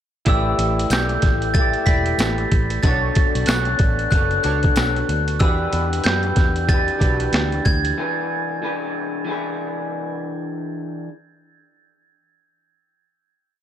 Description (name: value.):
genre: indie pop, bedroom pop.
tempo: 93 BPM.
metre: 4/4.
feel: swing 60% on 16ths.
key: E dorian.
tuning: A4 = 440 Hz.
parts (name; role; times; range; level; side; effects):
glockenspiel with brass mallets; melody; 0.3-9.9 s; E6 to B6; -24 LUFS; right 2 dB; wide subtle chorus.
chorused retro synth keys; accompaniment; 0.3-8.0 s; D4 to D5; -29 LUFS; right 4 dB; none.
electric guitar through a small old amp; accompaniment; 0.3-11.1 s; E3 to D5; -25 LUFS; left 3 dB; wide subtle chorus, vibrato effect.
vintage muted fingered electric bass; bass; 0.3-7.9 s; E1 to F#2; -23 LUFS; equal; transformer saturation.
boom bap sampler-style drum kit; drums; 0.3-8.0 s; hi-hat, kick drum, snare drum; -20 LUFS; equal; vintage 12-bit sampler grit.
tambourine; percussion; 0.9-4.9 s; none; -34 LUFS; right 3 dB; none.
room: little or no reverb.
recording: dry, gritty hardware recording.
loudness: -17 LUFS.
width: side -10 dB against mid.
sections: 0.3-10.6 chorus.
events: none.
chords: 0.3 A7sus4; 2.8 Bm9; 5.4 Em7; 8.0 E7.